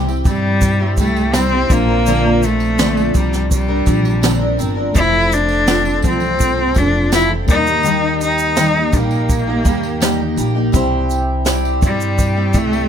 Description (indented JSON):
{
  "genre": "acoustic pop",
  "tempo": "83 BPM",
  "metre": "4/4",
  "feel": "straight",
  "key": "F major",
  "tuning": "A4 = 440 Hz",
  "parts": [
    { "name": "picked steel-string acoustic guitar", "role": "accompaniment", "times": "0.0-12.9 s", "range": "Bb2 to Bb4", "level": "-19 LUFS", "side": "equal", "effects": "double-tracked left and right, plate reverb" },
    { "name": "reed electric piano", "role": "accompaniment", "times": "0.0-12.9 s", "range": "F3 to C5", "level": "-28 LUFS", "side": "left 5 dB", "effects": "fast tremolo, plate reverb" },
    { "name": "upright bass", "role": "bass", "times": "0.0-12.9 s", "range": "F1 to G2", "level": "-20 LUFS", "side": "equal", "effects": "none" },
    { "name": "tambourine", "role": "percussion", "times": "0.1-12.9 s", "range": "none", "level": "-34 LUFS", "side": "right 10 dB", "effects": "none" },
    { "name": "jazz brush drum kit", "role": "drums", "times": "0.2-12.7 s", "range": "kick drum, shaker, snare drum", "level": "-19 LUFS", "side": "right 1 dB", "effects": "none" },
    { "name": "rich cello", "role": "melody", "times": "0.3-12.9 s", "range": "G3 to E4", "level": "-17 LUFS", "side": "left 1 dB", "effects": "plate reverb, tape echo" }
  ],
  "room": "light reverb",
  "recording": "none",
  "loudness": "-13 LUFS",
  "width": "side -8 dB against mid",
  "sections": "0.0-12.9 A section",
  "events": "none",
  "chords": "0.0 C; 1.7 Bbadd9; 5.0 F; 7.5 Eb; 10.7 C"
}